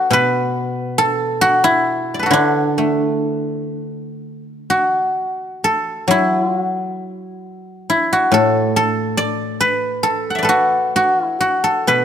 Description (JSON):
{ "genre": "chinese traditional", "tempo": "61-72 BPM", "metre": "2/4", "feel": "rubato", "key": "unclear", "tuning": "A4 = 443 Hz", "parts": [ { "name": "guzheng", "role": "solo", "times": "0.0-12.0 s", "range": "A2 to F#5", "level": "-15 LUFS", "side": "equal", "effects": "none" } ], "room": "light reverb", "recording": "close, detailed microphones", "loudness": "-15 LUFS", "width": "side -8 dB against mid", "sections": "0.0-4.7 A section; 4.7-12.0 B section", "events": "none", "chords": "none" }